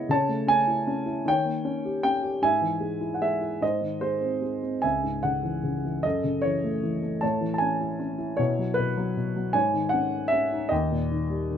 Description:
classical, lyrical solo piano; 51 BPM (dotted quarters); 6/8; rubato; A4 = 440 Hz
dark concert grand piano; solo; 0.0-11.6 s; C#2 to A5; -24 LUFS; equal
moderate studio reverb, RT60 0.5 s; -24 LUFS; side -8 dB against mid
0.0-11.6 A section
0.1 A/C#; 1.3 D#7; 2.4 Eadd9/G#; 3.6 G#; 4.8 C#m; 6.0 F#m7; 7.2 A; 8.4 Bsus4; 9.5 G#sus4; 10.7 D#

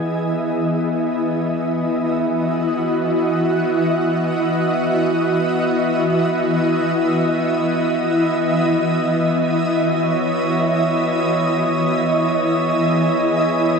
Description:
ambient; free time; A4 = 440 Hz
shimmering ambient pad; sustained chords; 0.0-13.8 s; E3 to D#5; -17 LUFS; right 1 dB; chorus, built-in reverb
bowed-like drone; drone; 0.0-13.8 s; E3 to B3; -24 LUFS; left 2 dB; built-in reverb
glass harmonica; texture; 10.0-13.8 s; C#5 to C#6; -25 LUFS; right 3 dB
wet scoring stage reverb, RT60 2.0 s, small room ambience; -16 LUFS; side -5 dB against mid
0.0-13.8 A section
0.0 Emaj7; 0.9 D#m/E

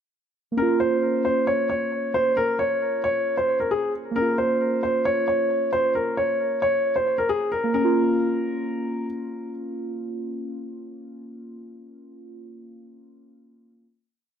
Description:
hip hop, trap; 134 BPM; 4/4; half-time; Bb minor; A4 = 438 Hz
muted felt-like synth keys; accompaniment; 0.5-13.8 s; Bb3 to F4; -27 LUFS; right 1 dB; chorus, phaser
dark baby grand piano; melody; 0.6-9.0 s; Ab4 to Db5; -22 LUFS; equal; digital delay
moderate scoring stage reverb, RT60 2.1 s; -21 LUFS; side -8 dB against mid
0.6-7.7 breakdown; 7.7-11.3 final chord
0.6 Bbm

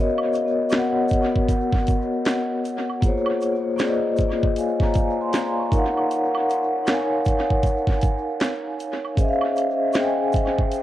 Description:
lo-fi hip hop; 78 BPM; 4/4; swing 63% on 16ths; A4 = 440 Hz
vibraphone with soft mallets; accompaniment; 0.0-10.8 s; Bb3 to Db6; -21 LUFS; left 1 dB; dub echo
woodblock and tube shaker; percussion; 0.2-10.8 s; -37 LUFS; right 5 dB; dub echo
drum and bass drum kit; drums; 0.4-10.8 s; hi-hat, kick drum, snare drum; -23 LUFS; right 1 dB; dub echo
light reverb, studio ambience; echo-heavy mix, cassette tape; -19 LUFS; side -13 dB against mid
0.0-10.8 A section
0.0 Cbmaj7; 3.0 Bbm9; 5.7 Ebm9; 9.2 Dbmaj9

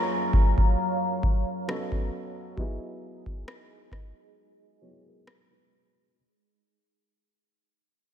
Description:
contemporary R&B; 67 BPM; 4/4; swing 54% on 16ths; A4 = 440 Hz
warm grand piano; accompaniment; 0.0-6.2 s; F#3 to E5; -37 LUFS; right 1 dB; low-pass filter
deep dark ambient pad; sustained chords; 0.0-6.1 s; F#3 to A#5; -30 LUFS; left 1 dB; chorus, built-in reverb, low-pass filter
booming analog drum machine; drums; 0.3-5.5 s; kick drum, rim click; -24 LUFS; equal; overdrive
fingerpicked acoustic archtop guitar; arpeggios; 4.8-6.1 s; F#4 to D#5; -60 LUFS; equal
light reverb, digital ambience; -24 LUFS; side -10 dB against mid
0.0-6.2 A section
fade-out 0.0-6.2; filter sweep 0.0-6.2; break 4.4-6.2
0.0 F#maj7; 1.7 B7; 2.6 Emaj7

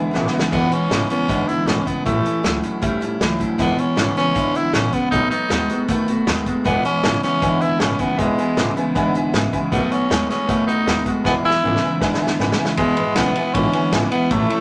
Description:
rockabilly; 157 BPM; 4/4; straight; E major; A4 = 445 Hz
picked steel-string acoustic guitar; accompaniment; 0.0-14.6 s; E2 to F#4; -26 LUFS; equal
tack piano; accompaniment; 0.0-0.5, 6.7-14.6 s; B4 to B5; -30 LUFS; equal
electric guitar through a small old amp; riff; 0.0-14.6 s; E2 to A3; -25 LUFS; equal
upright bass; bass; 0.0-14.5 s; E1 to D#2; -30 LUFS; equal
vintage drum kit; drums; 0.1-14.6 s; crash cymbal, hi-hat, kick drum, ride cymbal, snare drum; -26 LUFS; equal
growling tenor saxophone; melody; 0.5-14.6 s; G#3 to E4; -24 LUFS; equal
wet studio ambience, RT60 0.5 s; -19 LUFS; mono
0.5-12.8 A section; 12.8-14.6 B section
honky-tonk piano fill 0.0-0.5; drum fill 0.1-0.5, 11.3-12.8
0.0 E; 2.1 A; 3.6 E; 5.1 B7; 6.7 E; 9.7 B7; 11.3 E

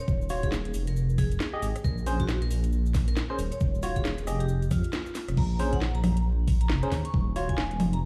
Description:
UK garage, two-step garage; 136 BPM; 4/4; swing 60% on 16ths; Bb minor; A4 = 440 Hz
vibraphone with hard mallets; melody; 0.0-8.1 s; F4 to Db6; -41 LUFS; equal; tape echo
dark detuned saw bass; bass; 0.1-8.1 s; Eb1 to F2; -30 LUFS; equal
electronic kick drum; drums; 0.1-7.6 s; -29 LUFS; equal
cabasa; percussion; 0.1-5.4 s; -53 LUFS; equal
barky tine electric piano; stabs; 0.3-7.5 s; Db4 to Eb5; -36 LUFS; equal; analog chorus, dub echo
garage drum kit; drums; 0.3-8.0 s; congas, crash cymbal, hi-hat, rim click, snare drum; -36 LUFS; equal
light reverb; played on a big sound system in a bare room, large studio reverb, vinyl crackle; -27 LUFS; mono
0.0-5.4 A section; 5.4-8.1 B section
band accent 4.9; drop 5.4-8.1
0.0 Ebm7; 0.7 Fm7; 1.8 Bbm7; 3.4 Ebm7; 4.3 Fm7; 5.4 Bbm7; 6.9 Ebm7

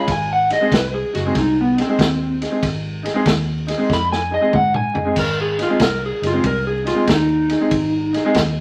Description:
electric blues shuffle; 94 BPM; 4/4; swing 67% on 8ths; Ab mixolydian; A4 = 440 Hz
electric slide guitar; melody; 0.0-8.3 s; Cb4 to Cb6; -21 LUFS; equal
bright upright piano; accompaniment; 0.0-8.4 s; Ab3 to Ab4; -24 LUFS; equal
vintage muted fingered electric bass; bass; 0.1-8.6 s; Gb1 to Ab2; -27 LUFS; equal
warm soul drum kit; drums; 0.1-8.6 s; crash cymbal, kick drum, ride cymbal, snare drum, toms; -25 LUFS; equal; vintage 12-bit sampler grit
moderate studio reverb, RT60 0.7 s; vinyl crackle; -18 LUFS; mono
0.0-5.2 A section; 5.2-8.6 B section
drum fill 3.9-5.2; electric slide guitar solo 5.2-8.6
0.1 Ab

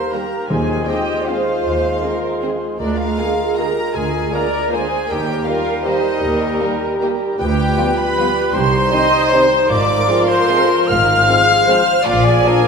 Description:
classical, orchestral ballroom waltz; 156 BPM; 3/4; uneven beats, rubato; A4 = 441 Hz
warm symphonic violin section; melody; 0.0-12.7 s; D5 to F6; -23 LUFS; left 2 dB
hollow concert flute; second line; 0.0-12.7 s; D5 to F6; -24 LUFS; left 3 dB
mellow clarinet; second line; 0.0-12.7 s; Eb4 to G4; -26 LUFS; left 1 dB
mellow cor anglais; second line; 0.0-12.7 s; Bb4 to D5; -26 LUFS; right 1 dB
dark studio viola section; accompaniment; 0.0-12.7 s; F4 to Eb5; -21 LUFS; right 2 dB
mellow bassoon; accompaniment; 0.0-12.7 s; F3 to Bb3; -24 LUFS; left 1 dB
mellow trumpet section; stabs; 0.0-12.7 s; D4 to F5; -21 LUFS; left 2 dB
warm studio violin section; second line; 0.1-12.5 s; Bb3 to Ab4; -29 LUFS; left 3 dB
mellow French horn section; sustained chords; 0.1-12.6 s; Bb3 to G4; -29 LUFS; left 3 dB
warm trombone section; sustained chords; 0.1-12.6 s; D3 to Bb3; -28 LUFS; right 3 dB
rich symphonic cello section; bass; 0.5-12.4 s; C2 to Bb2; -26 LUFS; right 3 dB
warm studio double bass section; bass; 0.5-12.4 s; Ab1 to Eb2; -24 LUFS; right 2 dB
timpani; percussion; 0.5-1.0 s; Eb3; -25 LUFS; equal
wet scoring stage reverb, RT60 1.8 s; minimal, uncompressed stereo recording; -14 LUFS; side -5 dB against mid
0.0-12.7 A section
0.5 Fm7/Eb; 2.8 Bb7/D; 5.1 Eb; 7.4 G7/D; 8.5 Cm; 9.7 Fm/Ab; 12.1 Bb

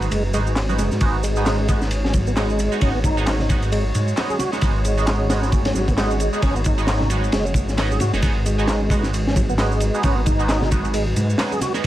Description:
breakbeat, breaks; 133 BPM; 4/4; swing 58% on 16ths; G# minor; A4 = 440 Hz
warbly tape-like pad; sustained chords; 0.0-11.9 s; G#3 to C#5; -28 LUFS; equal; chorus, built-in reverb, vintage 12-bit sampler grit, sidechain pumping
band-passed chord stab; stabs; 0.0-11.9 s; G#3 to F#4; -28 LUFS; right 4 dB; phaser, ensemble chorus, cassette tape, tape echo
detuned saw bass; bass; 0.0-11.9 s; F#1 to G#2; -22 LUFS; equal
crunchy breakbeat drum kit; drums; 0.0-11.9 s; kick drum, ride cymbal, snare drum; -23 LUFS; equal
electronic shaker and handclaps; drums; 0.0-11.9 s; -31 LUFS; right 1 dB
tonewheel organ; riff; 0.1-11.7 s; F#3 to G#4; -26 LUFS; equal; overdrive, chorus vibrato, slow rotary speaker, tube saturation, tape echo
congas; percussion; 0.2-11.7 s; -33 LUFS; right 2 dB
little or no reverb; vinyl crackle; -17 LUFS; side -14 dB against mid
0.0-11.9 A section
0.0 G#m7

